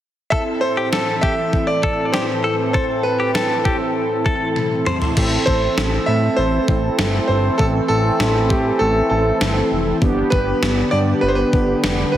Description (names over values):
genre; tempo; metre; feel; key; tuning
synth-pop; 99 BPM; 4/4; straight; A minor; A4 = 440 Hz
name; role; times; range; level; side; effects
clear concert grand piano; melody; 0.3-12.2 s; G4 to E5; -21 LUFS; equal; slapback echo
direct-recorded clean electric guitar; second line; 0.3-5.0 s; G4 to C5; -24 LUFS; left 3 dB; slapback echo
mellow synth brass; accompaniment; 0.3-12.2 s; B3 to A4; -22 LUFS; right 1 dB; chorus
sweeping resonant pad; sustained chords; 0.7-12.2 s; A2 to A4; -24 LUFS; left 1 dB; chorus, phaser
gated 80s digital drum machine; drums; 0.3-12.0 s; crash cymbal, kick drum, snare drum, toms; -22 LUFS; equal; gated reverb, gated reverb snare
fat analog bass; bass; 5.2-12.2 s; F1 to A2; -21 LUFS; equal; none
room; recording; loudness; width
moderate lush hall reverb, RT60 2.4 s; heavily compressed radio sound; -16 LUFS; side -12 dB against mid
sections
0.3-5.2 A section; 5.2-12.2 B section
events
drum fill 4.6-5.2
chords
0.3 Am; 10.0 G